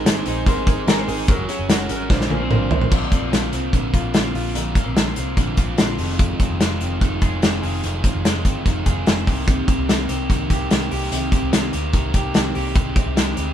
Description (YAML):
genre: jangly indie pop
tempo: 146 BPM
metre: 4/4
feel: straight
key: Bb mixolydian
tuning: A4 = 440 Hz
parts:
  - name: clear upright piano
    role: accompaniment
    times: 0.0-2.9 s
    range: C4 to Ab5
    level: -26 LUFS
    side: right 2 dB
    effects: none
  - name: crunchy overdriven guitar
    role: accompaniment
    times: 0.0-13.5 s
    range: F2 to C5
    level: -28 LUFS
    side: right 3 dB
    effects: none
  - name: electric guitar through a small old amp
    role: arpeggios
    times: 0.0-13.5 s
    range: F2 to C5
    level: -27 LUFS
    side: left 1 dB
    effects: none
  - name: vintage muted picked electric bass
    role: bass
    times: 0.0-13.5 s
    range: F1 to D2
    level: -26 LUFS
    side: equal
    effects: none
  - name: loose indie drum kit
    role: drums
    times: 0.1-13.5 s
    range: crash cymbal, hi-hat, kick drum, snare drum, toms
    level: -19 LUFS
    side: equal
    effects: none
room: light reverb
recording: band playing live in one room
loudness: -17 LUFS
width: side -10 dB against mid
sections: 0.0-2.9 A section; 2.9-13.5 B section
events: drum fill 2.1-2.9; upright piano fill 2.1-2.9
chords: 0.0 Abadd9; 1.3 Gbadd9; 2.1 Bbadd9; 6.0 Fm7; 9.3 Cm7; 12.8 Abmaj7/C